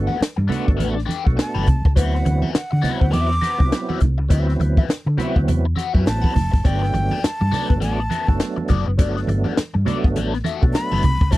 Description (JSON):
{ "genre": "funk", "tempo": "102 BPM", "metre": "4/4", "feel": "swing 60% on 16ths", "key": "unclear", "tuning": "A4 = 440 Hz", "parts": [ { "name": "percussive tonewheel organ", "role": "stabs", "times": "0.0-11.4 s", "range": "F#3 to F#4", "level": "-26 LUFS", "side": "right 4 dB", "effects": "overdrive, chorus vibrato, slow rotary speaker" }, { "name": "hollow-body short-scale fingered electric bass", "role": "bass", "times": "0.0-11.4 s", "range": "F1 to D3", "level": "-21 LUFS", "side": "equal", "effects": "none" }, { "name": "overdriven semi-hollow guitar", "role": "accompaniment", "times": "0.1-11.4 s", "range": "B3 to G5", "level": "-27 LUFS", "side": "left 9 dB", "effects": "wah, phaser" }, { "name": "congas", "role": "percussion", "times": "0.1-11.4 s", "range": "none", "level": "-27 LUFS", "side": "right 3 dB", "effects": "none" }, { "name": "compact cocktail drum kit", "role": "drums", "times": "0.2-11.4 s", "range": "hi-hat, kick drum, snare drum", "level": "-18 LUFS", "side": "equal", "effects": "none" }, { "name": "breathy jazz flute", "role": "melody", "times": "1.4-11.4 s", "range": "F#5 to D6", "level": "-26 LUFS", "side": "equal", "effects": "none" } ], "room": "little or no reverb", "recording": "dry, close 1970s-style studio recording", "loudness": "-17 LUFS", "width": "side -17 dB against mid", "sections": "0.0-11.4 A section", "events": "none", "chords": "0.0 Gmaj9; 2.0 D13; 6.6 Gmaj9" }